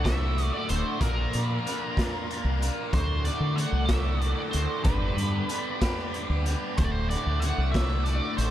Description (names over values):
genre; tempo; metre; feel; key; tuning
psychedelic rock; 62 BPM (dotted quarters); 6/8; straight; D mixolydian; A4 = 443 Hz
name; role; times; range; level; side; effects
octave-fuzz lead guitar; melody; 0.0-8.5 s; Bb4 to F#5; -32 LUFS; right 1 dB; wah, distortion, diffuse ambient delay
mellow tonewheel organ; sustained chords; 0.0-8.5 s; A4 to D6; -39 LUFS; right 4 dB; slow rotary speaker, chorus vibrato
cranked stack guitar; riff; 0.0-8.5 s; D2 to Bb4; -32 LUFS; left 1 dB; overdrive, phaser
deep dub fingered electric bass; bass; 0.0-8.5 s; D1 to D3; -26 LUFS; equal; none
raw garage drum kit; drums; 0.1-8.5 s; hi-hat, kick drum, snare drum; -30 LUFS; equal; none
room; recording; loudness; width
light reverb, small room ambience; none; -24 LUFS; side -12 dB against mid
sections
0.0-8.5 A section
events
none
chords
0.0 D; 1.0 Bbadd9; 2.9 D; 4.9 G; 6.8 D